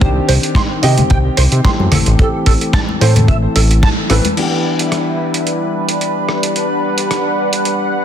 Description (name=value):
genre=nu-disco, nu disco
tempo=110 BPM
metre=4/4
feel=swing 54% on 16ths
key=G major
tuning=A4 = 440 Hz
part: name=dark concert grand piano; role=accompaniment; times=0.0-8.0 s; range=Eb3 to B4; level=-19 LUFS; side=left 1 dB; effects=sidechain pumping, tape echo
part: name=clean electric guitar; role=riff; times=0.0-4.1 s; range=A4 to C6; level=-22 LUFS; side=right 5 dB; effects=ensemble chorus, tape echo
part: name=fat analog bass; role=bass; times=0.0-4.2 s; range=A1 to C3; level=-13 LUFS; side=equal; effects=none
part: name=dusty soul sampler-style drum kit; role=drums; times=0.0-7.8 s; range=crash cymbal, hi-hat, rim click, snare drum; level=-20 LUFS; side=right 2 dB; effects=overdrive, small room ambience
part: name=kick drum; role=drums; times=0.0-3.9 s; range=none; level=-14 LUFS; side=equal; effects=small room ambience
part: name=congas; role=percussion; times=1.0-4.3 s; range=none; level=-20 LUFS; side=left 3 dB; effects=none
part: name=lush unison pad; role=sustained chords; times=4.4-8.0 s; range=G3 to F#5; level=-16 LUFS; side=equal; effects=chorus, sidechain pumping
room=moderate echo chamber reverb, RT60 1.8 s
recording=dense, heavily limited modern master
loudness=-12 LUFS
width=side -9 dB against mid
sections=0.0-4.4 A section; 4.4-8.0 B section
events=band accent 3.8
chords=0.0 Cmadd9; 1.9 Am7; 4.4 G6